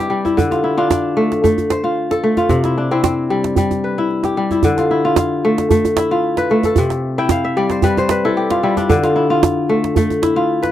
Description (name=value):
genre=west african traditional, West African string and xylophone music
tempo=112 BPM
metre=4/4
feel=straight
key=D dorian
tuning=A4 = 440 Hz
part: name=kora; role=arpeggios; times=0.0-10.7 s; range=C3 to G5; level=-14 LUFS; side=left 2 dB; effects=none
part: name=djembe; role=percussion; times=0.1-10.7 s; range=none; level=-18 LUFS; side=right 4 dB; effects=none
room=little or no reverb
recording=dry, close 1970s-style studio recording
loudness=-14 LUFS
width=side -12 dB against mid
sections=0.0-4.6 A section; 4.6-10.7 A section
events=kora fill 7.2-8.9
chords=0.4 Dm; 2.5 C; 4.6 Dm; 6.8 C; 8.9 Dm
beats=| 0.36 0.90 1.43 1.97 | 2.50 3.04 3.57 4.10 | 4.64 5.17 5.71 6.24 | 6.77 7.30 7.84 8.37 | 8.90 9.43 9.96 10.50